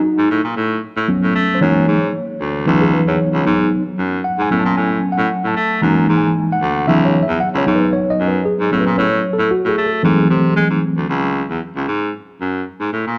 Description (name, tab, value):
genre	early-eighties boogie funk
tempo	114 BPM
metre	4/4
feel	straight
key	C# minor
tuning	A4 = 439 Hz
part	tine electric piano	accompaniment	0.0-11.1 s	E3 to A#5	-18 LUFS	equal	overdrive
part	clear baritone saxophone	bass	0.2-13.2 s	C#2 to A3	-21 LUFS	equal	none
room	wet concert hall reverb, RT60 2.3 s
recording	dark, warm production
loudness	-17 LUFS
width	mono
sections	0.0-11.1 A section; 11.1-13.2 B section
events	tine electric piano solo 0.0-11.1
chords	0.3 A6; 1.6 F#13; 2.7 C#m11; 3.5 G#m7; 4.5 A6; 5.8 F#13; 6.9 C#m11; 7.7 G#m7; 8.7 A6; 10.0 G#7b9b13; 11.1 C#m; 11.9 F#sus2